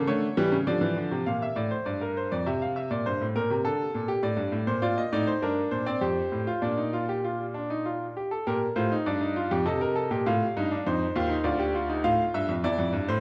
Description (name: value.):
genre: classical, baroque-style 3-part fugue for grand piano.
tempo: 100 BPM.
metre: 3/4.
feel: straight.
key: G minor, Bb major from 4.8 s.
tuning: A4 = 439 Hz.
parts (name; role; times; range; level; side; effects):
bright grand piano; solo; 0.0-13.2 s; D2 to F5; -28 LUFS; equal; none.
room: wet recital hall reverb, RT60 1.7 s.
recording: none.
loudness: -28 LUFS.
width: mono.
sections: 0.0-1.3 A section; 1.3-8.5 B section; 8.5-13.2 A section.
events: none.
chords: 0.0 A7; 0.7 Dm; 1.3 Bb; 2.5 Bbadd9; 3.1 Gmadd9; 4.8 Bb; 5.4 Gm; 6.0 F; 6.6 Bb; 9.7 Cm7; 10.3 F7; 11.4 Dmadd11; 12.0 F.